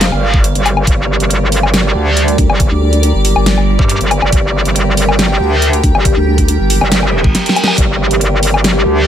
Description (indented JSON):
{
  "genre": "heavy wobble dubstep",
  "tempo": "139 BPM",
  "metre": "4/4",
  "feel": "half-time",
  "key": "G minor",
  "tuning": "A4 = 439 Hz",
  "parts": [
    { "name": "evolving wavetable pad", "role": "sustained chords", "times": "0.0-9.1 s", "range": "G3 to G5", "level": "-17 LUFS", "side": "right 2 dB", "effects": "chorus, built-in reverb, phaser, sidechain pumping" },
    { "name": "metallic wobble bass", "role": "bass", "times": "0.0-9.1 s", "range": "F1 to G2", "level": "-13 LUFS", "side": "equal", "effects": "chorus, overdrive" },
    { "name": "dubstep drum kit", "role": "drums", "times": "0.0-8.7 s", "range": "hi-hat, snare drum, woodblock", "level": "-16 LUFS", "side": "left 1 dB", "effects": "studio reverb" },
    { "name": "electronic kick drum", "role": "drums", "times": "0.3-7.9 s", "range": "none", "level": "-13 LUFS", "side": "equal", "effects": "studio reverb" },
    { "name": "vowel-sweep wobble bass", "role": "bass", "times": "2.4-7.3 s", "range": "G1 to D2", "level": "-12 LUFS", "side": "equal", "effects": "chorus, overdrive" },
    { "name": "reverse cymbal", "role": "sound effects", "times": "7.1-7.8 s", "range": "none", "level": "-20 LUFS", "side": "right 1 dB", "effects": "none" }
  ],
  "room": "digital ambience",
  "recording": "none",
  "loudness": "-10 LUFS",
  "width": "side -10 dB against mid",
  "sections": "0.0-9.1 A section",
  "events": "reverse cymbal 7.1-7.8; drum fill 7.3-7.8",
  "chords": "0.0 Gm"
}